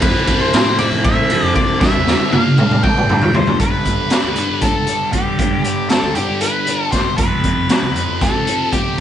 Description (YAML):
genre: psychedelic rock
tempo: 234 BPM (eighths)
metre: 7/8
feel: straight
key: G mixolydian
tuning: A4 = 440 Hz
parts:
  - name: octave-fuzz lead guitar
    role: melody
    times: 0.0-9.0 s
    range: G4 to G5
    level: -20 LUFS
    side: left 2 dB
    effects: distortion
  - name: tonewheel organ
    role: sustained chords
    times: 0.0-9.0 s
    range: F3 to E5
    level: -32 LUFS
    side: right 4 dB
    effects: none
  - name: thick fuzz guitar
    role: riff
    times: 0.0-9.0 s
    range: F2 to G3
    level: -20 LUFS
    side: left 1 dB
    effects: distortion, phaser
  - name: fuzz picked electric bass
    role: bass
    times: 0.0-9.0 s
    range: C2 to G3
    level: -24 LUFS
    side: equal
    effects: overdrive
  - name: raw garage drum kit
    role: drums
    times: 0.0-8.8 s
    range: hi-hat, kick drum, ride cymbal, snare drum, toms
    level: -16 LUFS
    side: right 1 dB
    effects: none
  - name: congas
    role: percussion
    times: 0.0-3.6 s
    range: none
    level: -30 LUFS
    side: left 2 dB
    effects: none
room: moderate studio reverb, RT60 0.5 s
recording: band playing live in one room, nothing above 10.3 kHz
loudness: -13 LUFS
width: side -10 dB against mid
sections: 0.0-3.6 A section; 3.6-9.0 B section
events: drum fill 1.8-3.6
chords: 0.0 Fmaj7; 1.8 G; 7.2 Fsus2